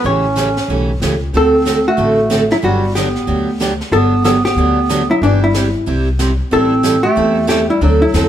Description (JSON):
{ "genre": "country, western swing", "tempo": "186 BPM", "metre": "4/4", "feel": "swing 61% on 8ths", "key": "G major", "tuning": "A4 = 440 Hz", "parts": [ { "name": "vintage hollow-body jazz guitar", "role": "melody", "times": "0.0-8.3 s", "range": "D4 to C#5", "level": "-17 LUFS", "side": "left 2 dB", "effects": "none" }, { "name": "mellow clarinet", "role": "second line", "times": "0.0-8.3 s", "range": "E3 to C#4", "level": "-17 LUFS", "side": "right 2 dB", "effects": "none" }, { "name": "picked steel-string acoustic guitar", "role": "accompaniment", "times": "0.0-8.3 s", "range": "C3 to A4", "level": "-18 LUFS", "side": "right 2 dB", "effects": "none" }, { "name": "upright bass", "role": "bass", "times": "0.0-8.3 s", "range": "G1 to E2", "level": "-18 LUFS", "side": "equal", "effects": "none" }, { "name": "jazz brush drum kit", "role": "drums", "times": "0.1-8.3 s", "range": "brushed snare drum, hi-hat, snare drum", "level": "-26 LUFS", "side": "right 1 dB", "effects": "none" } ], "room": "moderate stone room reverb, RT60 1.3 s", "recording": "band playing live in one room", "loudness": "-12 LUFS", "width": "side -10 dB against mid", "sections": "0.0-3.9 A section; 3.9-8.3 A section", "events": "none", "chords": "0.0 A7; 1.3 D7; 2.6 Gmaj7; 5.2 C/G; 6.5 Am7" }